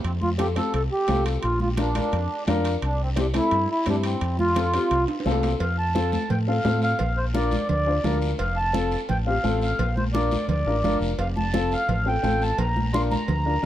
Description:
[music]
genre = latin, cumbia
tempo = 172 BPM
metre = 4/4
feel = straight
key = F major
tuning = A4 = 440 Hz
[part]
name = mellow accordion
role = melody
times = 0.0-13.7 s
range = C4 to C6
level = -26 LUFS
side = right 1 dB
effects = none
[part]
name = fingered electric bass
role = bass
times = 0.0-13.7 s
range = F1 to A2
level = -25 LUFS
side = equal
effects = none
[part]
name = congas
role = percussion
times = 0.0-13.5 s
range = none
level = -30 LUFS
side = right 1 dB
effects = none
[part]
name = guiro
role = percussion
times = 0.0-13.6 s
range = none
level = -40 LUFS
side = left 3 dB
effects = none
[part]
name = timbales and cowbell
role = percussion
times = 0.0-13.5 s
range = none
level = -36 LUFS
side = right 3 dB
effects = none
[part]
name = dark upright piano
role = accompaniment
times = 0.4-13.7 s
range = C4 to C5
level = -28 LUFS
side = left 3 dB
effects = none
[sound]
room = light reverb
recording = dark, warm production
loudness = -21 LUFS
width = side -12 dB against mid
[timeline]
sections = 0.0-5.6 A section; 5.6-13.7 B section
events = drum fill 5.1-5.6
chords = 0.0 F; 1.4 Bb; 2.8 C; 4.2 F; 7.0 Bb; 8.4 F; 9.8 Bb; 11.2 F; 12.6 Bb

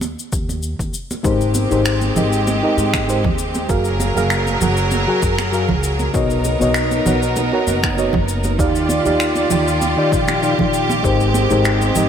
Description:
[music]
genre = sunset chillout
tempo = 98 BPM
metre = 4/4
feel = straight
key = unclear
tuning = A4 = 440 Hz
[part]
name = upright bass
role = bass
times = 0.0-12.1 s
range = Gb1 to Ab2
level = -21 LUFS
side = equal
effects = none
[part]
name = cabasa and finger snaps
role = drums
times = 0.0-12.1 s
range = none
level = -26 LUFS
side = left 2 dB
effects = none
[part]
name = congas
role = percussion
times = 0.0-12.1 s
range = none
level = -25 LUFS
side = right 4 dB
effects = none
[part]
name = electronic kick drum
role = drums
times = 0.3-11.2 s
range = none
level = -23 LUFS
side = equal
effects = overdrive
[part]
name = mellow FM electric piano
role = accompaniment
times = 1.2-12.1 s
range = Eb3 to G5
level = -19 LUFS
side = moving between left 6 dB and right 5 dB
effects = chorus, auto-pan, diffuse ambient delay
[part]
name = clear studio string section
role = sustained chords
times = 1.2-12.1 s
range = Eb3 to D5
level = -20 LUFS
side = right 1 dB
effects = none
[sound]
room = moderate plate reverb, RT60 3.0 s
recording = dreamy mix soaked in reverb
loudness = -15 LUFS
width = side -8 dB against mid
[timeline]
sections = 0.0-12.1 A section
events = none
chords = 0.0 N.C.; 1.2 Abmaj9; 3.7 Gbmaj9; 6.1 Bmaj9; 8.6 Ebmaj9; 11.0 Abmaj9

